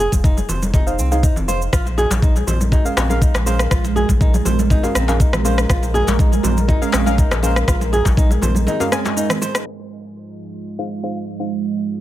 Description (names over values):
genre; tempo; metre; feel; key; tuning
afro house; 121 BPM; 4/4; straight; unclear; A4 = 440 Hz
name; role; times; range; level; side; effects
flamenco guitar; arpeggios; 0.0-9.5 s; C4 to C5; -24 LUFS; equal; sidechain pumping, ping-pong delay
round analog bass; bass; 0.0-8.7 s; F1 to C2; -20 LUFS; equal; sidechain pumping
deep house drum kit; drums; 0.0-9.8 s; crash cymbal, rim click, shaker; -24 LUFS; equal; overdrive, low-pass filter on perc, low-pass filter on snare, low-pass filter on cymbals
electronic kick drum; drums; 0.1-8.3 s; none; -16 LUFS; equal; none
congas; percussion; 0.1-9.5 s; none; -26 LUFS; right 1 dB; none
deep mellow chord stab; stabs; 0.9-11.6 s; Db4 to Ab5; -25 LUFS; left 1 dB; chorus, sidechain pumping, ping-pong delay
dark analog pad; sustained chords; 2.2-12.0 s; Ab3 to Eb5; -25 LUFS; right 5 dB; chorus, sidechain pumping
djembe; percussion; 2.0-9.1 s; none; -27 LUFS; left 4 dB; none
room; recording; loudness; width
light reverb, digital ambience; low-pass filter; -15 LUFS; side -14 dB against mid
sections
0.0-9.7 A section; 9.7-12.0 B section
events
break 8.7-9.7; filter sweep on analog synth pad 9.7-12.0; filter sweep 9.7-12.0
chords
0.0 Fm7; 1.7 Bbm7; 9.7 Fm7